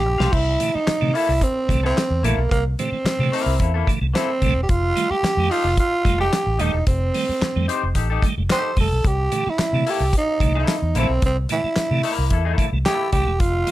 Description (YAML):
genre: funk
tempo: 110 BPM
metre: 4/4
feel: straight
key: C mixolydian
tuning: A4 = 440 Hz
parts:
  - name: growling tenor saxophone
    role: melody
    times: 0.0-13.7 s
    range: Bb3 to C5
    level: -22 LUFS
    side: right 2 dB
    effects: none
  - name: tonewheel organ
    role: stabs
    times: 0.0-13.7 s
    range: G2 to A3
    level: -26 LUFS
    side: right 4 dB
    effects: fast rotary speaker
  - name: vintage muted fingered electric bass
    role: bass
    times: 0.0-13.6 s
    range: Eb1 to C3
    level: -22 LUFS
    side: equal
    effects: none
  - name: clean electric guitar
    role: accompaniment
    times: 0.2-13.1 s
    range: Bb3 to F5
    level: -26 LUFS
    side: left 7 dB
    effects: none
  - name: damped 70s drum kit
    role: drums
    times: 0.2-13.7 s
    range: crash cymbal, handclaps, hi-hat, kick drum, snare drum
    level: -23 LUFS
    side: equal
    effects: none
room: light reverb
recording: none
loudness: -18 LUFS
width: side -15 dB against mid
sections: 0.3-13.7 A section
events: drum fill 0.0-0.3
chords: 0.3 C13; 4.7 F9; 9.0 C13